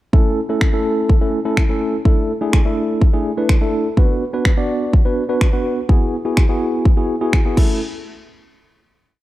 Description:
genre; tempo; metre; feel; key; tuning
dance-pop; 125 BPM; 4/4; straight; A major; A4 = 440 Hz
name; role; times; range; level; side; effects
tine electric piano; accompaniment; 0.1-7.8 s; A3 to D5; -19 LUFS; equal; medium stereo tremolo, sidechain pumping
pop drum kit; drums; 0.1-7.7 s; crash cymbal, finger snaps, kick drum; -14 LUFS; equal; none
room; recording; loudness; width
light reverb; dark, warm production; -14 LUFS; side -15 dB against mid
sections
0.1-7.8 verse; 7.8-9.2 final hit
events
none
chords
0.1 A; 2.1 Dsus2; 4.0 Bm; 5.9 Eadd9; 7.6 A; 7.8 N.C.

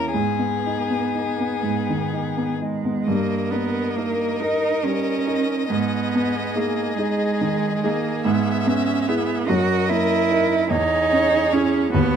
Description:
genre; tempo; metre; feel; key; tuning
classical, slow romantic movement for piano quartet; 40-50 BPM (dotted quarters); 6/8; rubato; G# minor; A4 = 440 Hz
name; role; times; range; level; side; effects
rich violin; melody; 0.0-12.2 s; G#4 to E5; -29 LUFS; left 7 dB; none
rich cello; second line; 0.0-12.2 s; G#3 to F#4; -23 LUFS; right 5 dB; none
clear baby grand piano; accompaniment; 0.0-12.2 s; D#2 to A#4; -23 LUFS; equal; none
warm violin; second line; 3.1-12.2 s; F#4 to A#4; -29 LUFS; left 5 dB; none
room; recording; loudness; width
light reverb; close, detailed microphones; -19 LUFS; side -8 dB against mid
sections
0.0-3.1 A section; 3.1-12.2 B section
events
none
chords
0.1 G#m; 3.1 D#/G; 5.7 G#m; 8.2 E/G#; 9.5 D#m/F#; 10.7 C#m/E

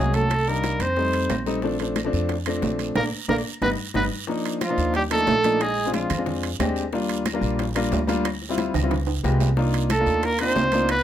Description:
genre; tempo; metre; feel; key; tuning
Afro-Cuban jazz; 181 BPM; 4/4; straight; unclear; A4 = 440 Hz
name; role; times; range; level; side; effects
clear trumpet; melody; 0.0-6.2, 9.9-11.0 s; F4 to C5; -24 LUFS; equal; none
breathy trombone; second line; 0.0-6.2, 9.9-11.0 s; F3 to C4; -27 LUFS; right 4 dB; none
warm concert grand piano; accompaniment; 0.0-10.9 s; F3 to G4; -26 LUFS; left 2 dB; none
upright bass; bass; 0.0-11.0 s; G1 to F2; -27 LUFS; equal; none
congas; percussion; 0.1-11.0 s; none; -32 LUFS; right 1 dB; none
guiro; percussion; 0.1-11.0 s; none; -38 LUFS; right 8 dB; none
timbales; percussion; 0.1-11.0 s; none; -31 LUFS; right 8 dB; none
bongos; percussion; 0.3-11.0 s; none; -34 LUFS; left 6 dB; none
claves; percussion; 0.3-11.0 s; none; -38 LUFS; left 2 dB; none
room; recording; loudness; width
light reverb; none; -21 LUFS; side -11 dB against mid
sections
0.0-4.3 A section; 4.3-11.0 B section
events
drum fill 3.0-4.3, 8.8-9.6; band accent 3.0-4.3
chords
0.3 Cm9; 1.0 F7; 1.6 Bbmaj9; 3.6 Gaug; 4.3 Ebmaj7sus2; 5.6 Bb7; 6.9 Ebmaj7; 8.3 Dm11; 8.9 Db7#11; 9.6 Cm11

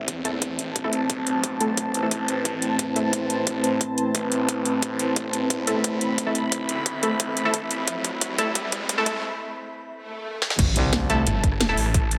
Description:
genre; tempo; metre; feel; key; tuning
dark technical drum and bass; 177 BPM; 4/4; straight; A minor; A4 = 439 Hz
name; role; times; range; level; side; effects
deep dark ambient pad; sustained chords; 0.0-10.6 s; A3 to E5; -32 LUFS; equal; chorus, built-in reverb, sidechain pumping
snarling distorted saw bass; bass; 0.0-12.2 s; G1 to E2; -33 LUFS; equal; distortion, overdrive, high-pass filter
airy breathy pad; texture; 0.0-12.2 s; C4 to B5; -31 LUFS; equal; chorus, sidechain pumping
drum and bass drum kit; drums; 0.1-12.2 s; crash cymbal, hi-hat, rim click, snare drum; -28 LUFS; equal; high-pass filter on hats, high-pass filter on snare, high-pass filter on toms, high-pass filter on cymbals, high-pass filter on room
electronic kick drum; drums; 0.1-12.0 s; none; -28 LUFS; equal; high-pass filter on kick, high-pass filter on room
orchestra-hit-like synth stab; stabs; 0.2-3.1, 5.7-11.8 s; A3 to A4; -30 LUFS; equal; built-in reverb, tape echo
riser, swell and impact; sound effects; 6.8-11.9 s; none; -34 LUFS; equal; none
growling FM bass; bass; 10.8-11.3 s; C2; -26 LUFS; equal; none
room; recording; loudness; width
moderate plate reverb, RT60 1.9 s, digital ambience; high-pass filter; -24 LUFS; mono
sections
0.0-10.6 A section; 10.6-12.2 B section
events
build-up 0.0-10.6; filter sweep on synth stab 0.0-10.6; filter sweep 0.0-10.6; drum fill 5.2-9.2, 10.4; riser 6.8-9.2; break 9.2-10.6; swell 10.0-10.6; drop 10.6-12.2; impact 10.6-11.9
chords
0.0 Amadd9; 10.6 Am

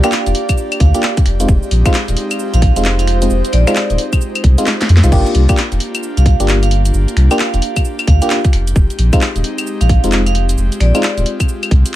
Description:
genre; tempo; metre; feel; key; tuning
UK garage, two-step garage; 132 BPM; 4/4; swing 63% on 16ths; G phrygian; A4 = 439 Hz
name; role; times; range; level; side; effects
vibraphone with hard mallets; melody; 0.0-11.3 s; D5 to F5; -23 LUFS; right 5 dB; digital delay
airy breathy pad; sustained chords; 0.0-12.0 s; Ab3 to G4; -24 LUFS; equal; chorus, vintage 12-bit sampler grit, sidechain pumping
FM electric piano; stabs; 0.0-11.0 s; Ab3 to G4; -18 LUFS; left 1 dB; chorus, digital delay
garage drum kit; drums; 0.0-11.9 s; claves, crash cymbal, finger snaps, handclaps, hi-hat, shaker, snare drum; -20 LUFS; left 1 dB; none
warbly tape-like pad; texture; 0.0-5.1 s; F4 to D5; -25 LUFS; equal; chorus, built-in reverb, sidechain pumping
saturated sub bass; bass; 0.3-11.8 s; Eb1 to F2; -12 LUFS; equal; none
electronic kick drum; drums; 0.5-11.8 s; none; -13 LUFS; equal; none
room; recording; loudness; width
little or no reverb; vinyl crackle; -11 LUFS; side -14 dB against mid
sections
0.0-5.1 A section; 5.1-12.0 A section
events
drop 0.0-5.1, 5.1-12.0; kick drops out 4.7-5.1; drum fill 4.7-5.1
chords
0.0 Gm7; 1.3 Fm7; 5.1 Gm7; 8.5 Fm7

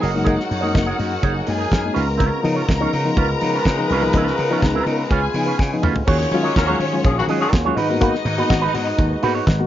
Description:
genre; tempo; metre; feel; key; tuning
disco; 124 BPM; 4/4; straight; unclear; A4 = 440 Hz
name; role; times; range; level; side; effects
clear studio string section; second line; 0.0-9.4 s; C#4 to A#5; -25 LUFS; left 2 dB; none
electric guitar with an envelope filter; accompaniment; 0.0-9.6 s; C#4 to D#5; -25 LUFS; right 8 dB; none
reed electric piano; accompaniment; 0.0-9.7 s; G#2 to F#4; -24 LUFS; left 3 dB; overdrive
tonewheel organ; sustained chords; 0.0-9.7 s; C#3 to B4; -27 LUFS; equal; slow rotary speaker
slap bass; bass; 0.0-9.6 s; F#1 to D#3; -24 LUFS; equal; none
damped 70s drum kit; drums; 0.0-9.6 s; crash cymbal, hi-hat, kick drum, snare drum, toms; -22 LUFS; equal; none
warm horn section; stabs; 3.2-7.5 s; C#3 to C#5; -24 LUFS; left 4 dB; none
room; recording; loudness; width
light reverb, studio ambience; nothing above 7.4 kHz; -16 LUFS; side -12 dB against mid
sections
0.0-6.1 A section; 6.1-9.7 B section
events
drum fill 5.6-6.1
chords
0.0 F#69; 2.0 C#7; 6.1 D#m11; 7.8 G#m7

